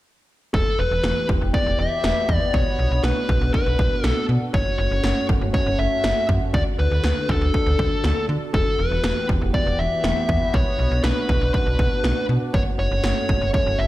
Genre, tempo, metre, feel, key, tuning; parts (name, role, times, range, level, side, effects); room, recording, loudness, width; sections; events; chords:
synth-pop; 120 BPM; 4/4; straight; B minor; A4 = 440 Hz
dark smooth lead guitar; melody; 0.5-13.9 s; A4 to E5; -24 LUFS; left 1 dB; overdrive, tape echo
sweeping resonant pad; sustained chords; 0.5-13.9 s; D3 to A4; -28 LUFS; equal; lush chorus
slap-like FM bass; bass; 0.5-13.9 s; E1 to D3; -22 LUFS; equal
punchy analog drum machine; drums; 0.5-13.7 s; kick drum, snare drum; -23 LUFS; equal; overdrive
light reverb, digital ambience; played on a big sound system in a bare room, stone room reverb; -18 LUFS; side -16 dB against mid
0.5-13.9 A section
0.5 Emadd9; 2.5 Bm; 4.5 F#m; 6.5 D; 8.5 Emadd9; 10.5 Bm; 12.5 F#m